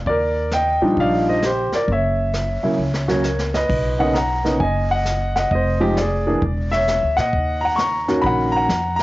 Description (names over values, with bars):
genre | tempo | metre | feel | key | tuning
jazz piano trio | 132 BPM | 4/4 | swing 65% on 8ths | B major from 3.7 s | A4 = 440 Hz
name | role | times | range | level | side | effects
upright bass | bass | 0.0-9.0 s | E1 to Bb2 | -23 LUFS | equal | none
warm grand piano | melody | 0.1-9.0 s | Db3 to C#6 | -18 LUFS | equal | cassette tape
vintage brush drum kit | drums | 0.1-9.0 s | brushed snare drum, crash cymbal, hi-hat, kick drum, snare drum | -29 LUFS | equal | cassette tape
room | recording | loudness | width
studio ambience | home recording on cassette, nothing above 7.6 kHz | -17 LUFS | side -18 dB against mid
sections
0.0-3.7 A section; 3.7-9.0 B section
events
drum fill 2.8-3.7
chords
0.1 Ebmaj9; 1.9 Gb7; 3.7 Bmaj7; 5.5 Fm7; 6.4 E7(b5, no3); 7.3 D#m7